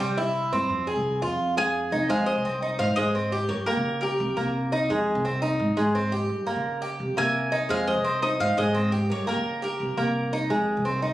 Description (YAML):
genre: latin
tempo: 171 BPM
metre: 4/4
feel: straight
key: F minor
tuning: A4 = 442 Hz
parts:
  - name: Cuban tres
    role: arpeggios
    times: 0.0-11.1 s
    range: G3 to Ab4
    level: -25 LUFS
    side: right 1 dB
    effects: none
  - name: upright bass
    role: bass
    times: 0.0-11.1 s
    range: C2 to Db3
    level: -29 LUFS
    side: equal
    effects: none
  - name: mandolin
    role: melody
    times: 1.6-4.7, 7.2-10.3 s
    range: Bb4 to Ab5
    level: -28 LUFS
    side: equal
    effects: none
  - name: flamenco guitar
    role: second line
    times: 1.6-4.7, 7.2-10.3 s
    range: G4 to F5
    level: -32 LUFS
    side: left 1 dB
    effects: none
room: moderate plate reverb, RT60 2.8 s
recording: recorded on a phone in the room, studio reverb, compression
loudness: -23 LUFS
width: side -14 dB against mid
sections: 0.0-2.1 A section; 2.1-11.1 B section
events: none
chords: 0.0 C; 0.7 Fm7; 2.8 Ab; 3.5 Gdim; 4.2 C5; 4.9 Fm7; 5.6 Ab; 6.3 Gdim; 7.0 C7; 7.7 Fm7; 8.4 Ab; 9.1 Gdim; 9.8 C5; 10.5 Fm7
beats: 0.00 0.35 | 0.70 1.05 1.40 1.75 | 2.10 2.45 2.80 3.15 | 3.50 3.85 4.20 4.55 | 4.90 5.25 5.60 5.95 | 6.30 6.65 7.00 7.35 | 7.70 8.05 8.40 8.75 | 9.10 9.45 9.80 10.15 | 10.50 10.85